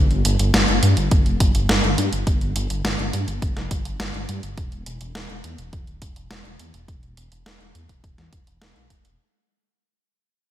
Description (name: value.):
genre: synthwave.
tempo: 104 BPM.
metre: 4/4.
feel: straight.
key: unclear.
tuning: A4 = 436 Hz.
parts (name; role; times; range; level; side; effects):
wide detuned saw bass; bass; 0.0-9.2 s; D1 to G2; -22 LUFS; equal; chorus, sidechain pumping.
clean 12-bit digital drum machine; drums; 0.1-9.2 s; hi-hat, snare drum; -23 LUFS; equal; gated reverb.
electronic kick drum; drums; 1.1-9.0 s; none; -20 LUFS; equal; none.
room: light reverb.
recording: bright 1980s-style digital production.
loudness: -18 LUFS.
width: side -12 dB against mid.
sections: 0.0-9.2 A section.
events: fade-out 0.0-9.2.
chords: none.